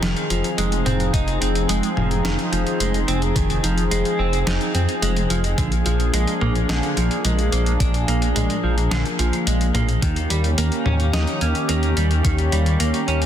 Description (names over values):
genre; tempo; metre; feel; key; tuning
synthwave; 108 BPM; 4/4; straight; F minor; A4 = 439 Hz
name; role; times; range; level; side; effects
chorused pulse-width pad; sustained chords; 0.0-13.3 s; Eb3 to Ab4; -24 LUFS; left 1 dB; sidechain pumping
clean electric guitar; arpeggios; 0.0-13.2 s; D3 to Eb4; -25 LUFS; right 2 dB; lush chorus, ping-pong delay
dark detuned saw bass; bass; 0.0-13.3 s; F1 to F2; -21 LUFS; equal; none
clean 12-bit digital drum machine; drums; 0.0-13.3 s; hi-hat, snare drum, toms; -27 LUFS; left 1 dB; none
electronic kick drum; drums; 1.1-12.4 s; none; -22 LUFS; equal; none
room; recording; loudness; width
light reverb; dense, heavily limited modern master; -18 LUFS; side -10 dB against mid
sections
0.0-13.3 A section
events
none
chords
0.0 Fm7; 5.6 Bb7; 10.0 Eb7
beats
0.03 0.58 | 1.14 1.69 2.25 2.80 | 3.36 3.91 4.47 5.03 | 5.58 6.14 6.69 7.25 | 7.80 8.36 8.91 9.47 | 10.03 10.58 11.14 11.69 | 12.25 12.80